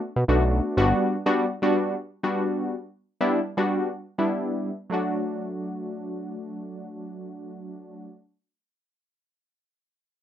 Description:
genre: dance-pop.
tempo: 123 BPM.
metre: 4/4.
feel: straight.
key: D major.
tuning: A4 = 440 Hz.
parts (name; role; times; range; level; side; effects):
fat analog bass; bass; 0.2-0.9 s; G1 to B2; -22 LUFS; right 1 dB; none.
warm analog keys; accompaniment; 0.3-8.1 s; F#3 to F#4; -25 LUFS; left 1 dB; chorus, tremolo.
room: moderate studio reverb, RT60 0.5 s.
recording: rough home demo mix.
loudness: -23 LUFS.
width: side -10 dB against mid.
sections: 0.0-4.9 A section; 4.9-8.8 B section.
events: none.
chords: 0.0 Bm7; 0.8 Gmaj7; 3.0 Em7; 4.9 D.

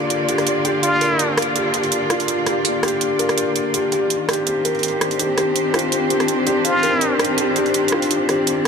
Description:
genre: half-time drum and bass.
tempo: 165 BPM.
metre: 4/4.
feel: swing 54% on 16ths, half-time.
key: unclear.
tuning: A4 = 441 Hz.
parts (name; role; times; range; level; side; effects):
rich studio cello section; sustained chords; 0.0-8.7 s; D3 to D5; -22 LUFS; equal; none.
felt-muted upright piano; arpeggios; 0.0-8.7 s; F4 to Bb4; -21 LUFS; equal; low-pass filter, ping-pong delay.
metallic inharmonic drone; texture; 0.0-8.7 s; D4; -25 LUFS; left 3 dB; chorus, built-in reverb.
drum and bass drum kit; drums; 0.1-8.7 s; hi-hat, rim click; -22 LUFS; right 2 dB; overdrive.
trumpet with plunger mute; melody; 0.8-1.3, 6.6-7.2 s; F4; -23 LUFS; left 1 dB; ping-pong delay.
room: moderate huge ambient reverb, RT60 5.1 s.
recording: none.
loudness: -16 LUFS.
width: side -6 dB against mid.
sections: 0.0-8.7 A section.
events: none.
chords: 0.0 Bb; 4.1 Cm.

